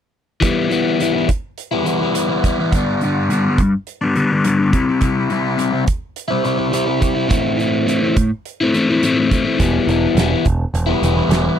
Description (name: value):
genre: indie rock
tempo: 105 BPM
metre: 4/4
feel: straight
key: E minor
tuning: A4 = 439 Hz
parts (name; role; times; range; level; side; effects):
- overdriven electric guitar; riff; 0.4-11.6 s; G2 to E4; -15 LUFS; left 2 dB; phaser
- loose indie drum kit; drums; 0.4-11.4 s; hi-hat, kick drum, snare drum; -19 LUFS; right 2 dB; none
- growling picked electric bass; bass; 9.6-11.5 s; E1; -19 LUFS; right 2 dB; overdrive
room: little or no reverb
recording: dry, close 1970s-style studio recording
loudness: -15 LUFS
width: side -9 dB against mid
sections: 0.4-11.6 A section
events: none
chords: 0.4 Em; 2.7 G; 4.7 C; 7.3 Am; 9.6 Em